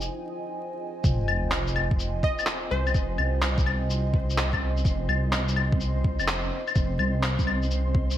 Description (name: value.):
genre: future garage.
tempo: 126 BPM.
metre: 4/4.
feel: swing 66% on 16ths.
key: F minor.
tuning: A4 = 440 Hz.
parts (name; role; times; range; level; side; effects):
dark analog pad; sustained chords; 0.0-8.2 s; F4 to Ab5; -34 LUFS; right 2 dB; chorus, sidechain pumping.
dark detuned saw bass; bass; 0.0-8.2 s; F1 to C2; -26 LUFS; equal; sidechain pumping.
electronic shaker, claves and handclaps; drums; 0.0-8.2 s; none; -28 LUFS; left 3 dB; gated reverb.
flickering grainy texture; texture; 0.0-8.2 s; C4 to C6; -39 LUFS; right 1 dB; built-in reverb, lush chorus.
electronic kick drum; drums; 1.0-8.1 s; none; -25 LUFS; equal; none.
sub drop; sound effects; 1.0-2.9 s; none; -32 LUFS; equal; none.
glassy wavetable pluck; melody; 2.2-3.1 s; C5 to Eb5; -33 LUFS; equal; chorus, ping-pong delay.
room: light reverb, digital ambience.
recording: bright 1980s-style digital production, vinyl crackle.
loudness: -23 LUFS.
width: side -12 dB against mid.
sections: 0.0-1.0 A section; 1.0-8.2 B section.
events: break 0.1-1.0; impact 1.0-2.9.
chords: 0.0 Fm7.